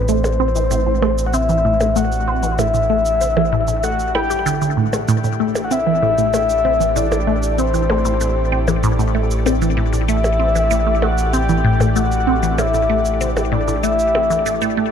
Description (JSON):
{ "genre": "ambient, sequencer-driven space music", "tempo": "96 BPM", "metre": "4/4", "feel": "straight", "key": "A dorian", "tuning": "A4 = 440 Hz", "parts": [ { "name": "soft octave-layered synth lead", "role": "melody", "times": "0.0-14.8 s", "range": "C5 to G5", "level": "-19 LUFS", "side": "left 3 dB", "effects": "chorus, ping-pong delay" }, { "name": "lush unison pad", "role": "sustained chords", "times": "0.0-14.9 s", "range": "E3 to D5", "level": "-27 LUFS", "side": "left 1 dB", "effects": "chorus" }, { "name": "resonant blip pluck", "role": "riff", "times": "0.0-14.9 s", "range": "A2 to E4", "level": "-20 LUFS", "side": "equal", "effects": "phaser, ping-pong delay" }, { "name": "round analog bass", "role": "bass", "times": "0.0-14.9 s", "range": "A1", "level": "-21 LUFS", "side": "right 1 dB", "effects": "none" }, { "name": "cabasa and percussion blips", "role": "percussion", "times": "0.1-14.7 s", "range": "none", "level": "-26 LUFS", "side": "equal", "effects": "ping-pong delay" } ], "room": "moderate plate reverb, RT60 2.5 s", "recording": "dark, warm production", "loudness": "-15 LUFS", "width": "side -8 dB against mid", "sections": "0.0-14.9 A section", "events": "fade-in on analog synth pad 0.0-14.9", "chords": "0.0 Am" }